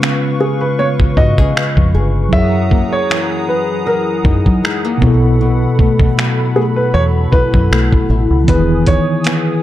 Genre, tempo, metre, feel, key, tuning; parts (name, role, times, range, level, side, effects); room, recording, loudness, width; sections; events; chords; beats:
contemporary R&B; 78 BPM; 4/4; swing 54% on 16ths; A4 = 440 Hz
mellow tine electric piano; accompaniment; 0.0-9.6 s; B2 to F#5; -17 LUFS; right 1 dB; medium stereo tremolo
hollow soft pad; sustained chords; 0.0-9.6 s; G#4 to D#6; -24 LUFS; left 1 dB; chorus
nylon-string guitar; arpeggios; 0.0-9.6 s; F#2 to G#4; -20 LUFS; left 5 dB
dusty soul sampler-style drum kit; drums; 0.0-9.5 s; finger snaps, hi-hat, kick drum; -15 LUFS; equal
warm grand piano; melody; 0.4-9.6 s; G#4 to E5; -18 LUFS; right 1 dB
deep dub fingered electric bass; bass; 1.2-9.0 s; E1 to F#3; -15 LUFS; equal
mallet-like synth pluck; texture; 8.9-9.6 s; barely audible
digital ambience; dark, warm production; -11 LUFS; side -13 dB against mid
0.0-9.6 A section
break 0.0-8.5
0.0 C#7; 2.3 F#13; 5.0 B7sus4; 8.5 Emaj7
0.02 0.79 1.56 | 2.33 3.10 3.87 4.64 | 5.41 6.17 6.94 7.71 | 8.48 9.25